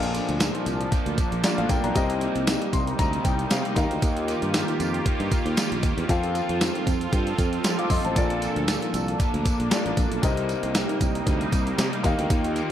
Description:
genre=1980s-style pop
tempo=116 BPM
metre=4/4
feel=swing 55% on 16ths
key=Bb major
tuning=A4 = 440 Hz
part: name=overdriven semi-hollow guitar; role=accompaniment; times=0.0-12.7 s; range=Bb2 to F4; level=-32 LUFS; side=right 2 dB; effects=analog chorus
part: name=warm baby grand piano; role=accompaniment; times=0.0-12.7 s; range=Bb2 to D6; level=-29 LUFS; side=left 3 dB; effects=none
part: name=sweeping resonant pad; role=sustained chords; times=0.0-12.7 s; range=C3 to A4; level=-30 LUFS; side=right 1 dB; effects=chorus
part: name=sustaining fretless electric bass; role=bass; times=0.0-12.6 s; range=A1 to F3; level=-28 LUFS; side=equal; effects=none
part: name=clean 12-bit digital drum machine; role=drums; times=0.0-12.7 s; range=hi-hat, kick drum, snare drum, tambourine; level=-25 LUFS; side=equal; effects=gated reverb
part: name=tambourine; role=percussion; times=0.1-12.7 s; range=none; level=-39 LUFS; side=right 6 dB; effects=none
room=light reverb, digital ambience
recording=none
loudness=-22 LUFS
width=side -10 dB against mid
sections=0.0-12.7 A section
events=grand piano fill 2.5-4.0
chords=0.0 Bbmaj7; 2.0 Cm7; 3.8 Ebadd9; 6.1 F; 8.2 Bbmaj7; 10.2 Cm7; 12.0 Ebadd9

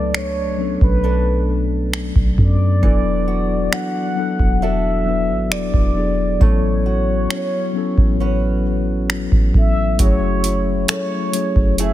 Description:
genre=contemporary R&B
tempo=67 BPM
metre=4/4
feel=straight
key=unclear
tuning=A4 = 440 Hz
part: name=mellow horn-like synth lead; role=melody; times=0.0-11.9 s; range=B4 to F#5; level=-23 LUFS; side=right 1 dB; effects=chorus, tape echo
part: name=mellow tine electric piano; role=accompaniment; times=0.0-11.9 s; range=F#3 to B4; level=-22 LUFS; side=left 5 dB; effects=slow stereo tremolo
part: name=fingerpicked old ladder-braced acoustic guitar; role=arpeggios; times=0.0-11.9 s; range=E3 to B4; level=-29 LUFS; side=right 6 dB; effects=tape echo
part: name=soft 808-style bass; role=bass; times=0.0-11.9 s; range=E1 to F#2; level=-20 LUFS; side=equal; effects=none
part: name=booming analog drum machine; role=drums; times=0.1-11.9 s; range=finger snaps, hi-hat, kick drum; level=-17 LUFS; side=equal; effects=soft clipping on snare
room=digital ambience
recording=dense, heavily limited modern master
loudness=-15 LUFS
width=side -13 dB against mid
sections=0.0-11.9 A section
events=break 0.0-10.0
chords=0.0 Bm9; 2.8 E9sus4; 6.4 A69; 10.0 F#m9

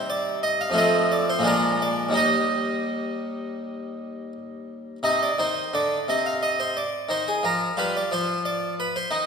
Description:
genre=classical, baroque-style suite movement for harpsichord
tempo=82-91 BPM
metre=4/4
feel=rubato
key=Eb major, C minor from 5.0 s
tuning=A4 = 440 Hz
part: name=harpsichord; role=solo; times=0.0-9.3 s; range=Eb2 to F5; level=-22 LUFS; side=equal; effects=none
room=wet concert hall reverb, RT60 2.0 s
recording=recorded in a church or concert hall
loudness=-21 LUFS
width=side -6 dB against mid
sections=0.0-5.0 A section; 5.0-9.3 A section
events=none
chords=0.0 Cm; 0.8 F7; 1.5 Bb7; 2.2 Eb; 5.0 Cm; 7.8 G7/F

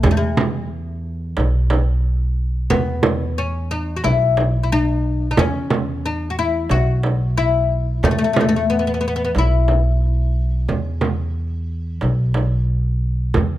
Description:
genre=Arabic maqam ensemble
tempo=90 BPM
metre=4/4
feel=straight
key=E maqam rast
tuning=A4 = 441 Hz
part: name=oud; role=melody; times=0.0-12.7 s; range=G#3-50c to F#4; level=-21 LUFS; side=left 4 dB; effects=none
part: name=upright bass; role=bass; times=0.0-13.6 s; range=B1 to E2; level=-19 LUFS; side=equal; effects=none
part: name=frame drum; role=percussion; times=0.0-13.5 s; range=none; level=-21 LUFS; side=right 3 dB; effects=none
room=little or no reverb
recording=close, detailed microphones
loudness=-17 LUFS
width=side -14 dB against mid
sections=0.0-13.3 A section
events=none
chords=none

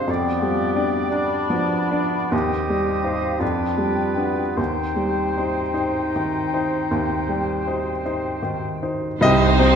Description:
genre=classical, romantic movement for piano and orchestra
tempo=48-58 BPM (dotted quarters)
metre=12/8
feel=rubato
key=C minor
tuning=A4 = 440 Hz
part: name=clear baby grand piano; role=melody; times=0.0-9.8 s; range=C2 to Eb5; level=-22 LUFS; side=equal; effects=none
part: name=clear oboe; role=second line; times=0.0-8.9 s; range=B4 to Eb5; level=-31 LUFS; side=right 1 dB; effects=none
part: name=flute section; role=second line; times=0.0-8.8 s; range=F5 to B5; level=-30 LUFS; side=left 5 dB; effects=none
part: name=mellow bassoon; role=accompaniment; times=0.0-8.9 s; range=F3 to D4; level=-30 LUFS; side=right 2 dB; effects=none
part: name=clear clarinet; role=second line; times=0.1-8.8 s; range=B3 to G4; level=-28 LUFS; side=left 2 dB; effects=none
part: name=rich chamber violin section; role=second line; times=9.2-9.8 s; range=C5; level=-24 LUFS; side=right 2 dB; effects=none
part: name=rich studio viola section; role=accompaniment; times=9.2-9.8 s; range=Eb4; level=-23 LUFS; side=equal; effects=none
part: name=rich chamber cello section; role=bass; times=9.2-9.8 s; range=C3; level=-25 LUFS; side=right 6 dB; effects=none
part: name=warm chamber double bass section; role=bass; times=9.2-9.8 s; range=C2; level=-20 LUFS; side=right 2 dB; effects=none
part: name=tam-tam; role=percussion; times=9.2-9.8 s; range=none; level=-28 LUFS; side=equal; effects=none
part: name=timpani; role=percussion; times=9.2-9.8 s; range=C3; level=-25 LUFS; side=right 2 dB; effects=none
part: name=rich chamber violin section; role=melody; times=9.6-9.8 s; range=C4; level=-23 LUFS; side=left 8 dB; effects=none
room=wet scoring stage reverb, RT60 1.6 s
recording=minimal, uncompressed stereo recording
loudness=-19 LUFS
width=side -7 dB against mid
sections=0.0-9.2 A section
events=band accent 9.2-9.8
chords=0.1 G7/F; 2.3 Cm/Eb; 3.4 G7/F; 4.6 Cm/Eb; 9.2 Cm

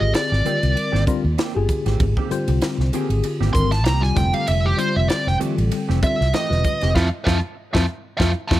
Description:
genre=electric jazz fusion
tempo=97 BPM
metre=4/4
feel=swing 55% on 16ths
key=unclear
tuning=A4 = 439 Hz
part: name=dark smooth lead guitar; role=melody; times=0.0-8.6 s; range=G4 to C6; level=-23 LUFS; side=right 2 dB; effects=overdrive
part: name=tine electric piano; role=accompaniment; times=0.0-8.6 s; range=D3 to C5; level=-24 LUFS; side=left 4 dB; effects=medium stereo tremolo, phaser
part: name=clean electric guitar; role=stabs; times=0.0-8.6 s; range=Eb3 to G4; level=-31 LUFS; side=right 11 dB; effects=ensemble chorus, analog delay
part: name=fretless electric bass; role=bass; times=0.0-8.6 s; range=E1 to F2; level=-20 LUFS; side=equal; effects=none
part: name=crisp fusion drum kit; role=drums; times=0.1-8.6 s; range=hi-hat, kick drum, ride cymbal, snare drum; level=-25 LUFS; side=equal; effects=none
room=little or no reverb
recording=none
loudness=-18 LUFS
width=side -14 dB against mid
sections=0.0-8.6 A section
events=lead electric guitar solo 0.0-8.6; band accent 7.0-8.6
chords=0.0 Abmaj9; 4.2 Fmaj9

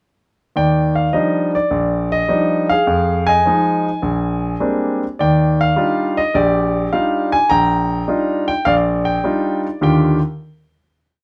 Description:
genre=solo jazz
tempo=104 BPM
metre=4/4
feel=swing 69% on 8ths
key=Eb major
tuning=A4 = 440 Hz
part: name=warm concert grand piano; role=solo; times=0.6-10.2 s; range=Bb1 to Bb5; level=-17 LUFS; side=equal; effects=none
room=moderate studio ambience, RT60 0.5 s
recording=none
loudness=-17 LUFS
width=mono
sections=0.6-9.8 A section; 9.8-11.2 final chord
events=none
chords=0.6 Ebmaj9; 2.9 Fm7; 4.0 Bb13; 5.2 Ebmaj9

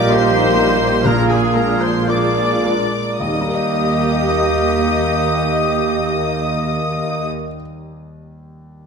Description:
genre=classical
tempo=52-70 BPM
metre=4/4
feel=rubato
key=Eb major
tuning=A4 = 439 Hz
part: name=clear concert grand piano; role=melody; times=0.0-8.9 s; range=Eb2 to Eb5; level=-24 LUFS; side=left 1 dB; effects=none
part: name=clear studio violin section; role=melody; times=0.0-7.3 s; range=Ab5 to Eb6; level=-25 LUFS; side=left 4 dB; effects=none
part: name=clear clarinet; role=second line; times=0.0-7.3 s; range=G4 to Ab4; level=-26 LUFS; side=right 2 dB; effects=none
part: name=dark chamber violin section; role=second line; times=0.0-7.3 s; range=Ab4 to Eb5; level=-28 LUFS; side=left 5 dB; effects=none
part: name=mellow silver concert flute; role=second line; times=0.0-7.3 s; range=Eb5 to F5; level=-28 LUFS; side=left 3 dB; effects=none
part: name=warm oboe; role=second line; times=0.0-7.3 s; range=Ab4 to Eb5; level=-26 LUFS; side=right 2 dB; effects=none
part: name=clear bassoon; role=accompaniment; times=0.0-7.3 s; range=Bb3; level=-25 LUFS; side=equal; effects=none
part: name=warm studio viola section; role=accompaniment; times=0.0-7.2 s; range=Bb3 to G4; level=-24 LUFS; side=right 4 dB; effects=none
part: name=warm French horn section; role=sustained chords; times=0.0-7.3 s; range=Bb3 to Ab4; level=-26 LUFS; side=left 3 dB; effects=none
part: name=warm trumpet section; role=stabs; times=0.0-7.3 s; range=Ab4 to Eb5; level=-24 LUFS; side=left 1 dB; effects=none
part: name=dark chamber cello section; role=bass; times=0.0-7.3 s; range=Bb2 to Eb3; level=-26 LUFS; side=right 2 dB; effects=none
part: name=warm chamber double bass section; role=bass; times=0.0-7.3 s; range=Bb1 to Eb2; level=-25 LUFS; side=right 4 dB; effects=none
part: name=timpani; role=percussion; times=0.0-7.3 s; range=Bb2 to Eb3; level=-27 LUFS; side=left 3 dB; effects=none
room=wet scoring stage reverb, RT60 1.8 s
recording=none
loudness=-14 LUFS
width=side -6 dB against mid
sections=0.0-3.2 A section; 3.2-7.5 B section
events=slowing down 0.0-3.2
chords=0.0 Eb/Bb; 1.1 Bb7; 3.2 Eb

